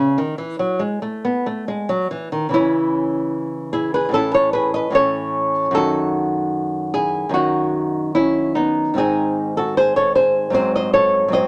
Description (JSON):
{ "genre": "classical, baroque-style dance for nylon-string guitar", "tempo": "70-77 BPM", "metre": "4/4", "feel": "rubato", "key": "C# minor", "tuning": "A4 = 439 Hz", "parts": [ { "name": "nylon-string guitar", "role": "solo", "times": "0.0-11.5 s", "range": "F#2 to D#5", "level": "-19 LUFS", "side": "equal", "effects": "none" } ], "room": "moderate studio reverb, RT60 0.7 s", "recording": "none", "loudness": "-19 LUFS", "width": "mono", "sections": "0.0-2.5 A section; 2.5-11.5 A section", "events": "none", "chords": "0.0 B (rootless); 2.5 C#m; 4.1 A; 5.7 D#dim/F#; 9.0 G#", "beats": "0.83 1.69 | 2.53 3.32 4.13 4.93 | 5.74 6.54 7.34 8.14 | 8.97 9.77 10.55 11.33" }